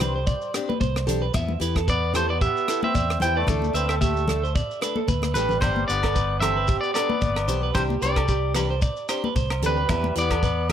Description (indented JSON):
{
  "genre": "highlife guitar band",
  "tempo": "112 BPM",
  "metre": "4/4",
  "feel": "swing 55% on 16ths",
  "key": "G major",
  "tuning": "A4 = 440 Hz",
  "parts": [
    { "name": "electric guitar at the edge of break-up", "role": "melody", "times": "0.0-10.7 s", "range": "B4 to G5", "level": "-26 LUFS", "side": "equal", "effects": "tape echo" },
    { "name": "mellow trumpet", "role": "second line", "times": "0.0-10.7 s", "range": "G3 to E4", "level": "-33 LUFS", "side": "left 4 dB", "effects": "none" },
    { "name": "picked steel-string acoustic guitar", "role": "accompaniment", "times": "0.0-10.7 s", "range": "E3 to A4", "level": "-33 LUFS", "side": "left 8 dB", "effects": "none" },
    { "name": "electric guitar at the edge of break-up", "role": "arpeggios", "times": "0.0-10.7 s", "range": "G4 to E5", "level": "-28 LUFS", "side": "right 8 dB", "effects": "none" },
    { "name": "fingered electric bass", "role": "bass", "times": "0.0-10.7 s", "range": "G1 to E2", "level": "-26 LUFS", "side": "equal", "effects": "none" },
    { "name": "tight funk drum kit", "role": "drums", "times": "0.0-10.7 s", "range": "hi-hat, kick drum, rim click", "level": "-27 LUFS", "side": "equal", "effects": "none" },
    { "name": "congas", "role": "percussion", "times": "0.0-10.7 s", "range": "none", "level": "-30 LUFS", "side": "left 5 dB", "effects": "none" },
    { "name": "shekere", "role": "percussion", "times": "0.0-10.6 s", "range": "none", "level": "-33 LUFS", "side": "left 4 dB", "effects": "none" },
    { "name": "agogo bells", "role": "percussion", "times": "5.6-10.7 s", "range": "none", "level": "-37 LUFS", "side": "equal", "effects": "none" }
  ],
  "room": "light reverb, studio reverb",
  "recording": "none",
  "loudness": "-21 LUFS",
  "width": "side -9 dB against mid",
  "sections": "0.0-10.7 A section",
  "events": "drum fill 5.2-5.6",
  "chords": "0.0 Csus2; 1.3 Em; 3.5 Dsus2; 5.6 G; 7.8 Csus2; 9.9 Em",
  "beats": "0.28 0.81 | 1.34 1.88 2.41 2.95 | 3.48 4.02 4.55 5.08 | 5.62 6.15 6.69 7.22 | 7.76 8.29 8.83 9.36 | 9.89 10.43"
}